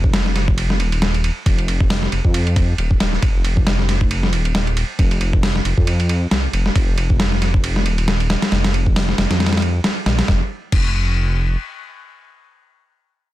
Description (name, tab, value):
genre	breakbeat, breaks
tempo	136 BPM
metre	4/4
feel	swing 56% on 16ths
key	unclear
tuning	A4 = 440 Hz
part	dark detuned saw bass	bass	0.0-11.6 s	Eb1 to F2	-18 LUFS	equal	none
part	dusty soul sampler-style drum kit	drums	0.0-10.9 s	crash cymbal, hi-hat, kick drum, ride cymbal, snare drum	-18 LUFS	equal	overdrive
room	little or no reverb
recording	dense, heavily limited modern master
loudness	-15 LUFS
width	side -15 dB against mid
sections	0.0-10.3 A section; 10.3-13.3 B section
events	drop 0.0-10.3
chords	none